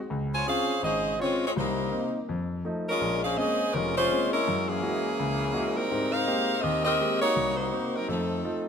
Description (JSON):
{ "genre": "jazz", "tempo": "165 BPM", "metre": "4/4", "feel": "swing 66% on 8ths", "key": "Ab major", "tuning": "A4 = 442 Hz", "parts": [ { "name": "warm concert grand piano", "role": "accompaniment", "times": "0.1-8.7 s", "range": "F1 to G4", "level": "-30 LUFS", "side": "left 1 dB", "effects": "none" }, { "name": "clear saxophone section", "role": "melody", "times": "0.3-8.7 s", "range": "Fb3 to Ab5", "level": "-26 LUFS", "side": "equal", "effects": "none" } ], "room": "moderate scoring stage reverb, RT60 1.7 s", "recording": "close, detailed microphones", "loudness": "-25 LUFS", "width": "side -7 dB against mid", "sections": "0.0-8.7 A section", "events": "none", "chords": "0.1 Dbmaj7; 1.5 Cm7; 2.3 F7; 3.0 Bbm9; 4.5 Gb9; 5.9 Abmaj9; 7.4 Cm7b5; 8.1 F7" }